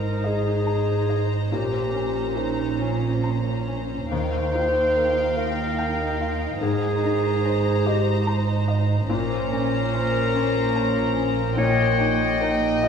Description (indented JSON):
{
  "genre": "cinematic, emotional film score for orchestra",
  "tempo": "48 BPM (dotted quarters)",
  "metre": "6/8",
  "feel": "rubato",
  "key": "Ab major",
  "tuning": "A4 = 437 Hz",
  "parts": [
    { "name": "clear studio violin section", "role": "melody", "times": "0.0-12.9 s", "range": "G5 to Bb5", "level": "-34 LUFS", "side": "left 2 dB", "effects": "none" },
    { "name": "warm clarinet", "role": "second line", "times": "0.0-12.9 s", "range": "Eb4 to Db5", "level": "-25 LUFS", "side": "left 1 dB", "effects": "none" },
    { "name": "warm studio violin section", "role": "second line", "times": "0.0-12.9 s", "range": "C5 to F5", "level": "-32 LUFS", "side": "left 1 dB", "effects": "none" },
    { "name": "felt-muted upright piano", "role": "accompaniment", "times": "0.0-12.9 s", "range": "Eb2 to Bb5", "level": "-29 LUFS", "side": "left 2 dB", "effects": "none" },
    { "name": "rich studio viola section", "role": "accompaniment", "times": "0.0-12.9 s", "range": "Bb3 to Eb4", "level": "-32 LUFS", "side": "right 1 dB", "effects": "none" },
    { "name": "concert harp", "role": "arpeggios", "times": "0.0-12.9 s", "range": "Ab2 to Bb5", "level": "-33 LUFS", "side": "left 5 dB", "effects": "none" },
    { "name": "dark studio cello section", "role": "bass", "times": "0.0-12.9 s", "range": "Eb2 to Bb2", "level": "-29 LUFS", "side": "right 4 dB", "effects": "none" },
    { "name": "dark studio double bass section", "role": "bass", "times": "0.0-12.9 s", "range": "Ab1 to Eb2", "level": "-28 LUFS", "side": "right 3 dB", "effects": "none" }
  ],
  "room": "wet scoring stage reverb, RT60 1.6 s",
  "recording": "heard from further back in the room",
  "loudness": "-20 LUFS",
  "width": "side -7 dB against mid",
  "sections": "0.0-12.9 A section",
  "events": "none",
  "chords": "0.0 Abadd9; 1.5 Bbmadd9; 4.1 Ebadd9; 6.6 Abadd9; 9.1 Bbmadd9; 11.6 Eb/Bb"
}